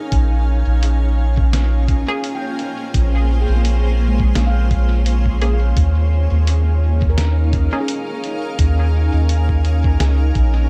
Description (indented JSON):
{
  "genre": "ambient dub",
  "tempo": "85 BPM",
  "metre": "4/4",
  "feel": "swing 55% on 16ths",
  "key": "Bb minor",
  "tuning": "A4 = 440 Hz",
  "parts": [
    { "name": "granular cloud pad", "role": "sustained chords", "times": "0.0-10.7 s", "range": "Bb3 to Ab5", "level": "-29 LUFS", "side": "equal", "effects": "built-in reverb" },
    { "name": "handpan", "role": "arpeggios", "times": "0.0-10.7 s", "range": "Ab3 to G5", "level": "-32 LUFS", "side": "equal", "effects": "low-pass filter, dub echo" },
    { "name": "bubbling stepped-filter texture", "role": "texture", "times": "0.0-10.7 s", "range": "Db4", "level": "-32 LUFS", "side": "equal", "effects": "chorus, built-in reverb" },
    { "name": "soft dub sub bass", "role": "bass", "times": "0.1-10.7 s", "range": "Bb1 to Eb2", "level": "-17 LUFS", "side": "equal", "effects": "tube saturation" },
    { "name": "electronic kick drum", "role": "drums", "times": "0.1-10.5 s", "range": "none", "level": "-21 LUFS", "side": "equal", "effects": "none" },
    { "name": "lo-fi sampler-style drum kit", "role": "drums", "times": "0.1-10.5 s", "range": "hi-hat, snare drum", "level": "-30 LUFS", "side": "equal", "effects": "dub echo" },
    { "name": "filtered dub chord stab", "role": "stabs", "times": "2.1-10.2 s", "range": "Bb3 to Ab4", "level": "-32 LUFS", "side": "equal", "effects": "phaser, lush chorus, dub echo" }
  ],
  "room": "little or no reverb",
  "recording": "echo-heavy mix",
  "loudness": "-17 LUFS",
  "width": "mono",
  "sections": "0.0-10.7 A section",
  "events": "filter sweep on handpan 0.0-10.7",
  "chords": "0.1 Bbm7; 5.8 Eb7sus4"
}